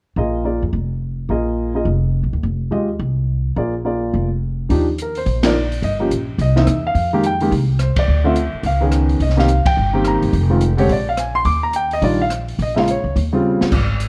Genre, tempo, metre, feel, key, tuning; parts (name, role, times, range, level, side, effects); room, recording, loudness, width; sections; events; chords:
jazz piano trio; 213 BPM; 4/4; swing 61% on 8ths; Eb major; A4 = 440 Hz
warm grand piano; melody; 0.2-13.7 s; Db3 to D6; -21 LUFS; equal; plate reverb
upright bass; bass; 0.2-14.1 s; F1 to F2; -21 LUFS; equal
open jazz drum kit; drums; 4.7-14.1 s; crash cymbal, hi-hat, kick drum, ride cymbal, rim click, snare drum; -26 LUFS; equal
light reverb; worn, warbling old tape, cassette tape, warbly pitch drift; -18 LUFS; mono
0.2-4.7 A section; 4.7-13.7 B section
band accent 5.4, 7.9, 9.6; drum fill 13.4
0.2 Bb7sus4; 2.4 F7(no3); 3.6 Bb7; 4.7 Ebmaj7sus2; 5.8 Gm; 6.4 C(#9); 7.0 Fsus2; 8.1 N.C.; 8.6 Dbsus2; 9.2 Cm7; 10.3 Fm; 10.9 Bb7; 11.5 Ebmaj7; 12.6 Bbm; 13.2 Eb13